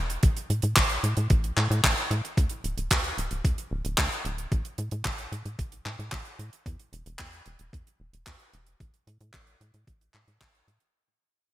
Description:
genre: italo disco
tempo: 112 BPM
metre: 4/4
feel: straight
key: unclear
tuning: A4 = 441 Hz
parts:
  - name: tight sequencer bass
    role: bass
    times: 0.0-10.8 s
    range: D1 to A2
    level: -30 LUFS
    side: equal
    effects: none
  - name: tight funk drum kit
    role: drums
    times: 0.1-10.9 s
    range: handclaps, hi-hat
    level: -28 LUFS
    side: equal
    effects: studio reverb, gated reverb
  - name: electronic kick drum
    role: drums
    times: 0.2-10.5 s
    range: none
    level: -25 LUFS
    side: equal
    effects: studio reverb
room: light reverb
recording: bright 1980s-style digital production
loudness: -25 LUFS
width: side -14 dB against mid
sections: 0.0-10.9 A section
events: fade-out 0.0-10.9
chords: none

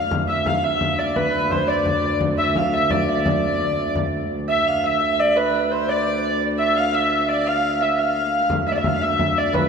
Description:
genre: medieval dance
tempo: 114 BPM (dotted quarters)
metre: 6/8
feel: straight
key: D dorian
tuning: A4 = 440 Hz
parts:
  - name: warm hurdy-gurdy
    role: melody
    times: 0.0-9.7 s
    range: B4 to F5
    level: -21 LUFS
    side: left 1 dB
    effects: none
  - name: Celtic harp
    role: second line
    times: 0.0-9.7 s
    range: B4 to F5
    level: -24 LUFS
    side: right 4 dB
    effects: none
  - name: dark viola da gamba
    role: drone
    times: 0.0-9.7 s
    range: D2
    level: -26 LUFS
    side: equal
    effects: none
  - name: frame drum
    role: percussion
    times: 0.1-4.1, 8.5-9.7 s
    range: none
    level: -25 LUFS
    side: left 2 dB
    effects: none
room: wet church reverb, RT60 3.4 s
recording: none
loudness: -18 LUFS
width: side -6 dB against mid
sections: 0.0-4.3 A section; 4.3-9.7 A section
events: none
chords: none

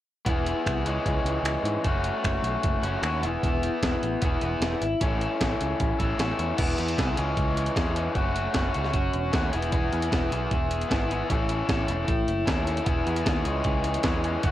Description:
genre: indie rock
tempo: 153 BPM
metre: 4/4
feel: straight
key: E major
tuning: A4 = 440 Hz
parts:
  - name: raw garage guitar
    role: riff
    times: 0.3-14.5 s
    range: E3 to A4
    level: -27 LUFS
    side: left 2 dB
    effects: overdrive
  - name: picked electric bass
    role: bass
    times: 0.3-14.5 s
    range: E1 to G#2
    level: -30 LUFS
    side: equal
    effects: none
  - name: breakbeat sampler-style drum kit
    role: drums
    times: 0.3-14.5 s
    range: crash cymbal, finger snaps, hi-hat, kick drum, snare drum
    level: -28 LUFS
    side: right 1 dB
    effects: none
room: light reverb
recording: worn, warbling old tape, cassette tape, warbly pitch drift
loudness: -24 LUFS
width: side -13 dB against mid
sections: 0.3-6.6 A section; 6.6-14.5 B section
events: none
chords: 0.3 E; 0.9 C#m; 1.8 F#m; 3.2 E; 5.0 A; 6.6 E; 7.2 C#m; 8.2 F#m; 9.5 E; 11.3 A; 12.9 E; 13.5 C#m

